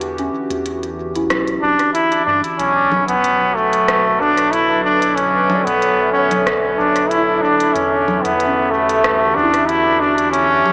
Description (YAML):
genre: ambient dub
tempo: 93 BPM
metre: 4/4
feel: straight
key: B minor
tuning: A4 = 440 Hz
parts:
  - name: warbly tape-like pad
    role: sustained chords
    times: 0.0-10.7 s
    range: B2 to E5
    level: -24 LUFS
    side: equal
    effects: chorus, built-in reverb
  - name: soft synth bell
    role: arpeggios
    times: 0.0-10.7 s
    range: C#4 to D5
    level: -29 LUFS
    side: equal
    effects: chorus, phaser, tape echo
  - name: soft dub sub bass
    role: bass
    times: 0.0-10.6 s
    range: F#1 to G2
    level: -35 LUFS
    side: equal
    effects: none
  - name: organic electronic drum kit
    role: drums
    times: 0.0-10.7 s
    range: congas, hi-hat, rim click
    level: -27 LUFS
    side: equal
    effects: dub echo
  - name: electronic kick drum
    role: drums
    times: 1.3-9.2 s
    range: none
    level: -46 LUFS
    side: equal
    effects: none
  - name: brilliant trombone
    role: melody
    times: 1.6-10.7 s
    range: A3 to E4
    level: -17 LUFS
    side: equal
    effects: dub echo
room: moderate echo chamber reverb, RT60 1.9 s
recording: small speaker sound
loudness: -16 LUFS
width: mono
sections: 0.0-2.6 A section; 2.6-10.7 B section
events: none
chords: 0.0 Em9; 2.6 Bm11; 7.8 Em9